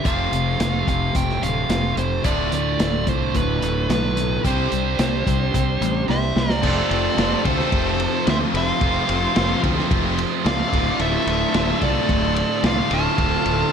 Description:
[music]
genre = classic rock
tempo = 110 BPM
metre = 4/4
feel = straight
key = unclear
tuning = A4 = 440 Hz
[part]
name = dark smooth lead guitar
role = melody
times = 0.0-13.7 s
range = B4 to A5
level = -25 LUFS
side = left 2 dB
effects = overdrive, slapback echo
[part]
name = biting overdriven guitar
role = riff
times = 0.0-13.7 s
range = D2 to F4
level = -27 LUFS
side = left 12 dB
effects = none
[part]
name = distorted electric guitar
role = riff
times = 0.0-13.7 s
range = D2 to C5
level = -25 LUFS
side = right 14 dB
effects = distortion
[part]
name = vintage drum kit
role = drums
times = 0.0-13.6 s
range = crash cymbal, hi-hat, kick drum, ride cymbal, snare drum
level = -24 LUFS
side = equal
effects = none
[part]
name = fuzz fingered electric bass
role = bass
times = 0.1-13.6 s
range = D1 to D2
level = -25 LUFS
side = equal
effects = overdrive
[part]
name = string machine, cellos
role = sustained chords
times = 2.2-13.7 s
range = A3 to D5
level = -32 LUFS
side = left 1 dB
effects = none
[part]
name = octave-fuzz lead guitar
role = second line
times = 6.1-13.7 s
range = A4 to F5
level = -29 LUFS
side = right 3 dB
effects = distortion
[part]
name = crunchy overdriven guitar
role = riff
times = 6.6-13.7 s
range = D2 to F3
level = -28 LUFS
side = equal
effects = none
[sound]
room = light reverb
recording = none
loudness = -18 LUFS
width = side -7 dB against mid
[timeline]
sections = 0.0-6.6 A section; 6.6-13.7 B section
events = drum fill 6.1-6.6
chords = 0.1 F; 2.2 Dm; 4.4 Csus2; 6.6 F; 10.7 Dm

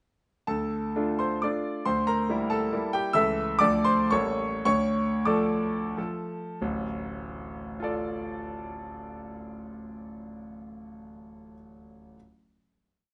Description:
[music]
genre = classical, romantic triple-time dance for piano with dotted rhythms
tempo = 86-146 BPM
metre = 3/4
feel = rubato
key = D minor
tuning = A4 = 438 Hz
[part]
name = bright concert grand piano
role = solo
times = 0.5-12.2 s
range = D1 to E6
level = -29 LUFS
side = equal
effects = none
[sound]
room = moderate small room ambience, RT60 0.5 s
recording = nothing above 10.3 kHz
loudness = -28 LUFS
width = mono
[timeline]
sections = 0.5-6.6 A section; 6.6-10.1 final chord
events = slowing down 2.5-6.6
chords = 0.5 Dm; 1.9 Em7b5/D; 3.1 A/C#; 3.6 Dm; 4.1 A7b9; 4.7 Dm

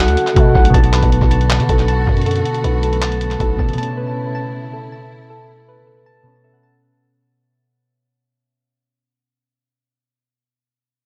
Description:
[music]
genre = hip hop, trap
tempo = 158 BPM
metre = 4/4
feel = half-time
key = B minor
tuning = A4 = 440 Hz
[part]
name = concert harp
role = accompaniment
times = 0.0-9.3 s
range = B2 to F#5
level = -23 LUFS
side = equal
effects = low-pass filter, tape echo
[part]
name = dark symphonic string section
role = sustained chords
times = 0.0-6.8 s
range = C#3 to F#4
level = -30 LUFS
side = equal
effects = none
[part]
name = soft electric-piano-like synth keys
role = arpeggios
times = 0.0-6.8 s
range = F#4 to A5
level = -23 LUFS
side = equal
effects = chorus, low-pass filter, tape echo
[part]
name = growling 808-style bass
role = bass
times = 0.0-3.8 s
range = A1 to D3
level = -20 LUFS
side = equal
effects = none
[part]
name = lo-fi sampler-style drum kit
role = drums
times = 0.1-3.9 s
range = handclaps, hi-hat, kick drum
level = -19 LUFS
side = equal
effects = none
[sound]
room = little or no reverb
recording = echo-heavy mix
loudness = -15 LUFS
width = mono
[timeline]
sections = 0.7-6.8 A section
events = fade-out 0.7-6.8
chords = 0.0 F#m7; 0.7 Bm7; 3.8 Aadd9/B

